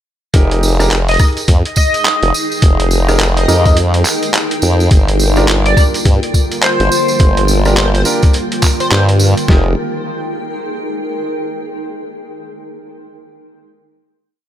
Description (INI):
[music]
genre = glitch hop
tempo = 105 BPM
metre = 4/4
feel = swing 61% on 16ths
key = F dorian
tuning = A4 = 442 Hz
[part]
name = dark concert grand piano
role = stabs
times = 0.3-9.7 s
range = D4 to Bb4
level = -21 LUFS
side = right 1 dB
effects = sidechain pumping, dub echo
[part]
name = formant-sweep wobble bass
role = bass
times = 0.3-9.7 s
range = F1 to G2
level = -13 LUFS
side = equal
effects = chorus
[part]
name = boom bap sampler-style drum kit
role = drums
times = 0.3-9.6 s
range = kick drum, snare drum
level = -10 LUFS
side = equal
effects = none
[part]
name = boom bap sampler-style drum kit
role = drums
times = 0.3-9.5 s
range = handclaps, hi-hat, rim click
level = -18 LUFS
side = equal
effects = none
[part]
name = tambourine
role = percussion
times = 0.3-9.5 s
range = none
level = -22 LUFS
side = right 4 dB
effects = none
[part]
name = granular cloud pad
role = texture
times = 1.8-11.7 s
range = Eb4 to G5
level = -22 LUFS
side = equal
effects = built-in reverb, sidechain pumping
[part]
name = sync lead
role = melody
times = 1.1-9.0 s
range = C5 to Eb5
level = -19 LUFS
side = equal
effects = analog chorus, cassette tape, dub echo
[part]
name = warbly tape-like pad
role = sustained chords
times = 5.2-9.8 s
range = D3 to F4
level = -22 LUFS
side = equal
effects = chorus, built-in reverb, sidechain pumping
[sound]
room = digital ambience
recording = none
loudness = -10 LUFS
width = side -11 dB against mid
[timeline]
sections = 0.3-9.5 drop; 9.5-11.8 final chord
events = drop 0.3-9.5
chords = 0.3 Fm11; 4.9 Gm7; 9.5 Fm11 (rootless)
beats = | 0.34 0.91 1.48 2.05 | 2.62 3.20 3.77 4.34 | 4.91 5.48 6.05 6.62 | 7.20 7.77 8.34 8.91 | 9.48 10.05 10.62 11.20